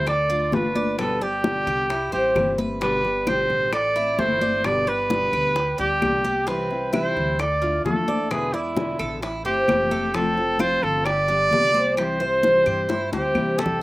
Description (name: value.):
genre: latin, Cuban son and guajira.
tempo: 131 BPM.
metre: 4/4.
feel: straight.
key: C major.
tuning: A4 = 440 Hz.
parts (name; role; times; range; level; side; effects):
warm trumpet; melody; 0.0-13.8 s; E4 to D5; -22 LUFS; right 1 dB; none.
fingerpicked steel-string acoustic guitar; accompaniment; 0.0-13.8 s; B2 to G4; -29 LUFS; left 2 dB; none.
Cuban tres; arpeggios; 0.0-13.8 s; C4 to D5; -27 LUFS; equal; none.
upright bass; bass; 0.0-13.8 s; F1 to G2; -32 LUFS; equal; none.
bongos; percussion; 0.1-13.7 s; none; -31 LUFS; left 4 dB; none.
claves; percussion; 0.1-13.6 s; none; -34 LUFS; left 1 dB; none.
congas; percussion; 0.1-13.8 s; none; -28 LUFS; left 1 dB; none.
room: little or no reverb.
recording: recorded outdoors, with no room sound.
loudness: -19 LUFS.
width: side -19 dB against mid.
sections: 0.0-13.8 A section.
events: drum fill 12.9-13.8.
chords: 0.1 Dm; 1.0 G; 1.9 C; 2.8 G; 3.7 Am; 4.6 G; 6.5 C; 7.4 Dmadd9; 8.3 E7; 9.2 Am; 10.1 F; 11.1 G; 12.0 C.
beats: 0.07 0.53 | 0.99 1.44 1.90 2.36 | 2.82 3.27 3.73 4.19 | 4.65 5.11 5.56 6.02 | 6.48 6.94 7.40 7.85 | 8.31 8.77 9.23 9.69 | 10.14 10.60 11.06 11.52 | 11.98 12.44 12.89 13.35 | 13.81.